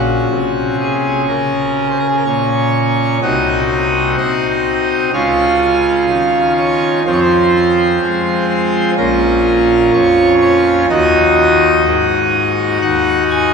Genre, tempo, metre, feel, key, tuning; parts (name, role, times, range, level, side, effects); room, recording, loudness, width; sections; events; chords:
classical, chorale-style piece for pipe organ; 62 BPM; 4/4; rubato; A4 = 441 Hz
pipe organ, full organ; solo; 0.0-13.5 s; Bb1 to Ab5; -11 LUFS; equal
wet cathedral reverb, RT60 5.0 s; recorded in a church or concert hall, nothing above 10.4 kHz; -11 LUFS; side -5 dB against mid
0.0-13.5 A section
0.0 Gb/Bb; 3.2 Cdim; 5.1 Db; 7.1 Fm; 9.0 Bbm; 10.9 Ebm